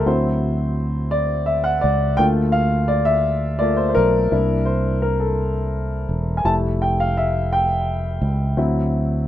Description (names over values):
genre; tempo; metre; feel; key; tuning
slow gospel; 56 BPM (dotted quarters); 6/8; straight; F major; A4 = 439 Hz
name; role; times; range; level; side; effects
clear upright piano; accompaniment; 0.0-9.3 s; F#3 to A5; -20 LUFS; left 1 dB; none
fingered electric bass; bass; 0.0-9.3 s; E1 to D2; -21 LUFS; right 1 dB; none
room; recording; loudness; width
little or no reverb; rough home demo mix; -17 LUFS; side -12 dB against mid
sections
0.0-9.3 A section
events
upright piano solo 0.0-9.3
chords
0.1 D7; 2.2 Gm13 (rootless); 4.3 C7; 6.4 Fmaj7; 8.6 D7